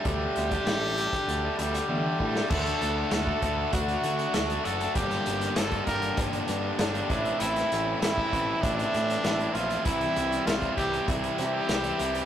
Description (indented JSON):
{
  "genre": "indie rock",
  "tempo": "98 BPM",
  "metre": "4/4",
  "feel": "straight",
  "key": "unclear",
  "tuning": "A4 = 440 Hz",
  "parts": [
    { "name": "brilliant trumpet", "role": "melody", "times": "0.0-12.3 s", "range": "D4 to Bb4", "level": "-30 LUFS", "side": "equal", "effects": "none" },
    { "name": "string machine, full ensemble", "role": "sustained chords", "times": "0.0-12.3 s", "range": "Bb3 to E6", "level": "-44 LUFS", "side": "left 1 dB", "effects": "none" },
    { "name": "fuzz guitar", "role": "riff", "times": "0.0-12.3 s", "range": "G2 to G4", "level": "-30 LUFS", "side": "left 2 dB", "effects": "distortion" },
    { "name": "high-gain distorted guitar", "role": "riff", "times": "0.0-12.3 s", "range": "G2 to G4", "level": "-33 LUFS", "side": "right 4 dB", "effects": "distortion" },
    { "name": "growling picked electric bass", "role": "bass", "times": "0.1-12.2 s", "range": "F#1 to D3", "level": "-34 LUFS", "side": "right 1 dB", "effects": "overdrive" },
    { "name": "vintage drum kit", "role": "drums", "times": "0.1-12.3 s", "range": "crash cymbal, hi-hat, kick drum, snare drum, toms", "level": "-31 LUFS", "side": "equal", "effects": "none" }
  ],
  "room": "moderate studio reverb, RT60 0.5 s",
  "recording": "rough rehearsal-room recording",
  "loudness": "-25 LUFS",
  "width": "side -10 dB against mid",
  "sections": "0.0-2.5 A section; 2.5-12.3 B section",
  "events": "drum fill 1.9-2.5",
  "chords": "0.0 Dsus4; 2.5 D; 5.0 Gmadd9; 7.1 Am; 9.9 C"
}